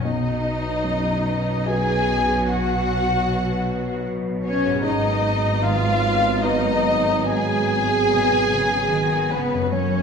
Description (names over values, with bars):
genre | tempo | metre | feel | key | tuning
cinematic, emotional film score for orchestra | 74 BPM | 3/4 | rubato | unclear | A4 = 438 Hz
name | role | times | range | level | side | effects
dark clarinet | second line | 0.0-10.0 s | B4 to G#5 | -27 LUFS | equal | none
rich chamber violin section | second line | 0.0-10.0 s | B3 to G#4 | -28 LUFS | left 2 dB | none
dark grand piano | accompaniment | 0.0-10.0 s | B1 to B4 | -29 LUFS | equal | none
rich symphonic viola section | accompaniment | 0.0-10.0 s | B3 to G#4 | -27 LUFS | right 4 dB | none
dark French horn section | sustained chords | 0.0-10.0 s | F#3 to B3 | -29 LUFS | left 2 dB | none
concert harp | arpeggios | 0.0-10.0 s | F#2 to B4 | -32 LUFS | left 6 dB | none
clear symphonic double bass section | bass | 0.0-10.0 s | F#1 to B1 | -27 LUFS | right 2 dB | none
rich symphonic cello section | bass | 0.0-10.0 s | F#2 to D#3 | -29 LUFS | right 3 dB | none
warm symphonic violin section | melody | 0.1-10.0 s | B4 to G#5 | -26 LUFS | left 3 dB | none
room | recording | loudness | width
wet scoring stage reverb, RT60 1.9 s | minimal, uncompressed stereo recording | -18 LUFS | side -6 dB against mid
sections
0.0-10.0 A section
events
none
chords
0.0 B; 4.8 G#m7